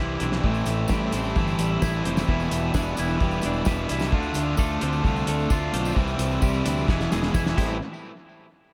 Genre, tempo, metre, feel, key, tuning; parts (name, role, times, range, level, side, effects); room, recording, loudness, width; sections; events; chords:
indie rock; 130 BPM; 4/4; straight; A minor; A4 = 440 Hz
crunchy overdriven guitar; riff; 0.0-7.8 s; E2 to F4; -31 LUFS; equal; tape echo
twelve-string electric guitar; riff; 0.0-7.8 s; A2 to B4; -30 LUFS; equal; analog chorus, tape echo
fuzz fingered electric bass; bass; 0.0-7.8 s; E1 to D2; -31 LUFS; equal; overdrive
cloth-damped thuddy drum kit; drums; 0.2-7.7 s; crash cymbal, hi-hat, kick drum, snare drum; -29 LUFS; equal; tape echo
tambourine; percussion; 0.5-7.8 s; -46 LUFS; equal; tape echo
light reverb; echo-heavy mix; -24 LUFS; mono
0.0-7.8 A section
drum fill 6.9-7.8
0.4 Am7; 2.3 Em7; 4.1 Dm7; 6.0 Cadd9; 6.9 E; 7.6 Am7; 7.8 N.C.